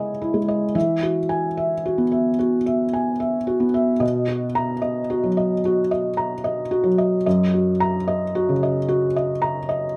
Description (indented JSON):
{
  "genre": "neoclassical minimalist piano",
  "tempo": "74 BPM",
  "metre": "4/4",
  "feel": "rubato",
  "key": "unclear",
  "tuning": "A4 = 440 Hz",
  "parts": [
    { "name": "felt-muted upright piano", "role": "solo", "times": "0.0-10.0 s", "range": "F#2 to A#5", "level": "-21 LUFS", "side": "equal", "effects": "none" }
  ],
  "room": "moderate studio reverb, RT60 0.6 s",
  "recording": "none",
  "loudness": "-21 LUFS",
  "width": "mono",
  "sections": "0.0-10.0 A section",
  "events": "none",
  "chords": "0.0 C#madd9; 0.8 Eadd9; 4.0 Bmaj7; 7.3 F#6",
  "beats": "| 0.76 1.58 2.40 3.21 | 4.02 4.84 5.66 6.45 | 7.26 8.08 8.88 9.69"
}